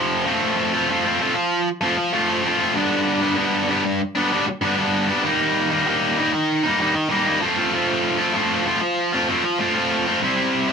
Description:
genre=rock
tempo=96 BPM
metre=4/4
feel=straight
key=unclear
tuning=A4 = 440 Hz
part: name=tight distorted guitar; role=solo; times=0.0-10.7 s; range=F2 to F4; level=-18 LUFS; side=equal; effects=distortion
room=moderate studio ambience, RT60 0.5 s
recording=band playing live in one room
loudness=-18 LUFS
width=side -6 dB against mid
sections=0.3-2.8 A section; 2.8-10.7 B section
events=none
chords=0.3 F; 2.8 G; 5.2 Eb; 7.4 F; 10.2 C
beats=| 0.27 0.90 1.52 2.14 | 2.76 3.38 4.01 4.63 | 5.25 5.87 6.49 7.12 | 7.74 8.36 8.98 9.60 | 10.22

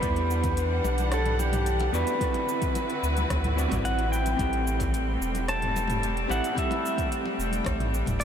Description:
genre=sunset chillout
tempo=110 BPM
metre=4/4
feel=straight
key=A dorian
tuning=A4 = 440 Hz
part: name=pedal steel guitar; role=melody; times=0.0-8.2 s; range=G4 to A5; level=-30 LUFS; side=left 1 dB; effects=diffuse ambient delay
part: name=hollow-body jazz guitar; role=accompaniment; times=0.0-8.2 s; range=B3 to F#5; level=-33 LUFS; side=right 2 dB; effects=auto-pan, ping-pong delay
part: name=warm symphonic string section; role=sustained chords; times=0.0-8.2 s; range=D3 to F#5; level=-32 LUFS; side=left 1 dB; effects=none
part: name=warm sub bass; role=bass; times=0.0-8.2 s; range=E1 to E2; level=-28 LUFS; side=equal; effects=none
part: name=deep house drum kit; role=drums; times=0.0-8.2 s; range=cabasa, hi-hat, rim click, toms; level=-37 LUFS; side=right 1 dB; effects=small room ambience
part: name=electronic kick drum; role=drums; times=0.0-8.2 s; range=none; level=-32 LUFS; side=equal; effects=small room ambience
part: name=congas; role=percussion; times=0.0-8.2 s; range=none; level=-38 LUFS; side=left 5 dB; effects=none
room=moderate huge ambient reverb, RT60 8.1 s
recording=dreamy mix soaked in reverb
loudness=-24 LUFS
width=side -8 dB against mid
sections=0.0-8.2 A section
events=none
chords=0.0 Em9; 2.2 D13; 4.4 Am7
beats=| 0.03 0.57 1.12 1.66 | 2.21 2.75 3.30 3.84 | 4.39 4.93 5.48 6.03 | 6.57 7.12 7.66 8.21

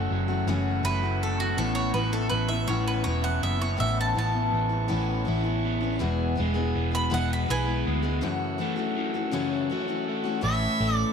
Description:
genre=folk rock and heartland rock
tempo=54 BPM (dotted quarters)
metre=6/8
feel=straight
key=A major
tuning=A4 = 440 Hz
part: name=bowl-back mandolin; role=second line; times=0.0-7.9 s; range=F#4 to B5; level=-30 LUFS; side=right 2 dB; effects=none
part: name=picked steel-string acoustic guitar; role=accompaniment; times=0.0-11.1 s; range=E2 to G#4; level=-30 LUFS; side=left 5 dB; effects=none
part: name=tonewheel organ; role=sustained chords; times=0.0-11.1 s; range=A4 to E6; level=-36 LUFS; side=right 3 dB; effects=stopped rotary speaker
part: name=crunchy overdriven guitar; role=riff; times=0.0-11.1 s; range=E2 to F#4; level=-32 LUFS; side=right 1 dB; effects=phaser
part: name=hollow-body short-scale picked electric bass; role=bass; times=0.0-11.0 s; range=E1 to D2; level=-28 LUFS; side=right 1 dB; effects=none
part: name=warm harmonica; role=melody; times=10.4-11.1 s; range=E5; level=-26 LUFS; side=right 1 dB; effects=none
room=light reverb, studio reverb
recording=none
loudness=-24 LUFS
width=side -6 dB against mid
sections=0.0-10.4 A section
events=mandolin solo 0.0-10.4; break 8.2-10.4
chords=0.0 F#m7; 1.6 Aadd9; 6.0 E; 8.2 F#m7; 10.4 A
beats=0.48 | 1.59 2.70 | 3.81 4.91 | 6.02 7.12 | 8.23 9.33 | 10.44

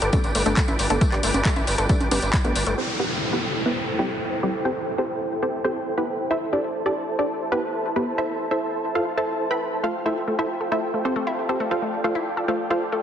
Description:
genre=uplifting trance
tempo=136 BPM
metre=4/4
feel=straight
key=A minor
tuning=A4 = 439 Hz
part: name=filtered supersaw swell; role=sustained chords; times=0.0-13.0 s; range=E4 to D6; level=-28 LUFS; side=right 1 dB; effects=sidechain pumping, low-pass filter
part: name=analog pluck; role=arpeggios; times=0.0-2.8, 9.8-13.0 s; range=G3 to A4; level=-29 LUFS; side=left 3 dB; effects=chorus, sidechain pumping, ping-pong delay
part: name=gritty driven synth bass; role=bass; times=0.0-2.7 s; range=G1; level=-25 LUFS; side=equal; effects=sidechain pumping
part: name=punchy analog drum machine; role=drums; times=0.0-2.8 s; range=congas, handclaps, hi-hat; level=-27 LUFS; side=equal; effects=overdrive
part: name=tambourine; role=percussion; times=0.0-2.8 s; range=none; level=-33 LUFS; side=right 1 dB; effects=none
part: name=wide unison pluck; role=melody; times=0.1-12.9 s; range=G3 to B5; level=-25 LUFS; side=equal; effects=sidechain pumping, ping-pong delay
part: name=electronic kick drum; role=drums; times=0.1-2.4 s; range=none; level=-21 LUFS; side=equal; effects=overdrive
part: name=downlifter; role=sound effects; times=2.8-6.3 s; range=none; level=-29 LUFS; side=left 1 dB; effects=none
room=moderate lush hall reverb, RT60 1.7 s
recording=heavily compressed radio sound, multiband compression, nothing above 10.3 kHz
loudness=-21 LUFS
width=side -9 dB against mid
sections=0.0-2.8 A section; 2.8-13.0 B section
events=filter sweep on synth pluck 2.8-13.0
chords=0.0 G; 2.8 Am7; 9.8 Fadd9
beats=0.13 0.57 | 1.01 1.45 1.90 2.34 | 2.78 3.22 3.66 4.10 | 4.54 4.98 5.42 5.87 | 6.31 6.75 7.19 7.63 | 8.07 8.51 8.95 9.39 | 9.84 10.28 10.72 11.16 | 11.60 12.04 12.48 12.92

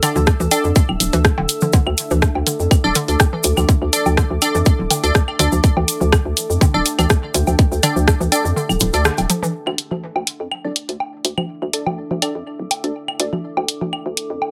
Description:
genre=minimal techno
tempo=123 BPM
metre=4/4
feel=swing 53% on 16ths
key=unclear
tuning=A4 = 442 Hz
part: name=hollow square pluck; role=riff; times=0.0-9.5 s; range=A2 to F3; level=-27 LUFS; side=equal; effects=chorus, sidechain pumping, digital delay
part: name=wavetable chord stab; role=stabs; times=0.0-13.3 s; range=D4 to D5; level=-25 LUFS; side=equal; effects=digital delay
part: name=garage drum kit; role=drums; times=0.0-14.3 s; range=hi-hat, rim click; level=-20 LUFS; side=equal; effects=none
part: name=claves, woodblock and congas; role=percussion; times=0.0-14.5 s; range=none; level=-26 LUFS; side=equal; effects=none
part: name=tube shaker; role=percussion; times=0.0-9.5 s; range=none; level=-28 LUFS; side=equal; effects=none
part: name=deep dark ambient pad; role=texture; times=0.0-14.5 s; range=D4 to E6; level=-29 LUFS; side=equal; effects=chorus, built-in reverb, sidechain pumping
part: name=hollow knocking FM bass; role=bass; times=0.2-14.4 s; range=D1 to F2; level=-22 LUFS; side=equal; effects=sidechain pumping, high-pass filter
part: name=electronic kick drum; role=drums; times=0.3-8.2 s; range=none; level=-16 LUFS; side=equal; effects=none
room=light reverb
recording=none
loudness=-18 LUFS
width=mono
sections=0.0-9.5 A section; 9.5-14.5 B section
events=drop 0.0-9.5; break 8.6-9.5; band accent 9.1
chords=0.0 D5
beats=0.27 0.76 1.25 | 1.73 2.22 2.71 3.20 | 3.69 4.17 4.66 5.15 | 5.64 6.12 6.61 7.10 | 7.59 8.08 8.56 9.05 | 9.54 10.03 10.52 11.00 | 11.49 11.98 12.47 12.95 | 13.44 13.93 14.42

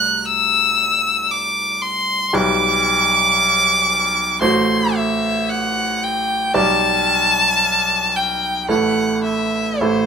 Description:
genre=classical, romantic duo for violin and grand piano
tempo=56 BPM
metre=4/4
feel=rubato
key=G major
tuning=A4 = 440 Hz
part: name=clear violin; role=melody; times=0.0-10.1 s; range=C5 to F#6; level=-16 LUFS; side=left 1 dB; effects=none
part: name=bright grand piano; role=accompaniment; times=0.0-10.1 s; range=A1 to D5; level=-20 LUFS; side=right 2 dB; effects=none
room=light reverb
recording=minimal, uncompressed stereo recording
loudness=-15 LUFS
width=side -6 dB against mid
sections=0.0-10.1 A section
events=none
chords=0.0 D7/C; 2.3 G/B; 4.4 F#dim/A; 6.5 G/B; 8.7 A5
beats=0.27 1.31 | 2.34 3.36 4.41 5.48 | 6.55 7.62 8.69 9.80

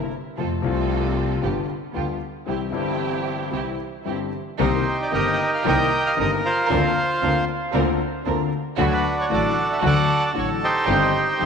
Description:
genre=tango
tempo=115 BPM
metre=4/4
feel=rubato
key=C major, C minor from 4.6 s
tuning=A4 = 440 Hz
part: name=clear concert grand piano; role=accompaniment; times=0.0-11.5 s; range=G1 to G4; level=-24 LUFS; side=left 8 dB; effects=none
part: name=dark studio string section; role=stabs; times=0.0-11.5 s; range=A3 to Bb4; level=-29 LUFS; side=right 10 dB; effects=none
part: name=clear double bass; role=bass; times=0.0-11.5 s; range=G1 to F2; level=-27 LUFS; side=right 3 dB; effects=none
part: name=bandoneon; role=melody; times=4.6-11.5 s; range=D4 to G5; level=-21 LUFS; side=right 2 dB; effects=tape echo
room=moderate echo chamber reverb, RT60 2.2 s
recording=1960s-style stereo with parts hard left and right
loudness=-20 LUFS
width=side -6 dB against mid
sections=0.0-4.6 A section; 4.6-11.5 B section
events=break 2.5-4.6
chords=0.4 F; 1.4 G7; 2.5 C; 4.6 Cm7; 6.7 Bbadd9/D; 8.8 D; 10.9 Cm/G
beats=| 0.38 0.90 1.42 1.94 | 2.46 2.99 3.52 4.06 | 4.59 5.13 5.66 6.18 | 6.71 7.22 7.74 8.26 | 8.78 9.30 9.83 10.35 | 10.88 11.40

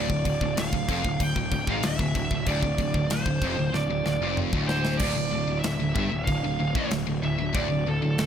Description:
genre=heavy metal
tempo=95 BPM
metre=4/4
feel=straight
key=D minor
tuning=A4 = 440 Hz
part: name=high-gain lead guitar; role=melody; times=0.0-8.3 s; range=A4 to G5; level=-30 LUFS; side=right 3 dB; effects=distortion, digital delay
part: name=distorted electric guitar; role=riff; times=0.0-8.3 s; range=D2 to A2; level=-30 LUFS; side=right 6 dB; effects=distortion
part: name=high-gain distorted guitar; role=riff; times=0.0-8.3 s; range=D2 to A2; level=-32 LUFS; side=left 12 dB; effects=distortion
part: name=overdriven semi-hollow guitar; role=riff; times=0.0-8.3 s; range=D2 to A2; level=-34 LUFS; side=left 2 dB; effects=none
part: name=fuzz picked electric bass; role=bass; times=0.0-8.3 s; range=D1 to A1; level=-31 LUFS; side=equal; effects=overdrive
part: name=tight metal drum kit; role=drums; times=0.1-8.3 s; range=crash cymbal, kick drum, snare drum, toms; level=-30 LUFS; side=left 1 dB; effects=none
room=studio reverb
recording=none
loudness=-23 LUFS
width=side -8 dB against mid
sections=0.0-5.0 A section; 5.0-8.3 B section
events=drum fill 3.7-5.0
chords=0.0 Dm; 5.0 D5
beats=0.57 1.21 1.84 | 2.47 3.11 3.74 4.38 | 5.01 5.64 6.28 6.91 | 7.55 8.18

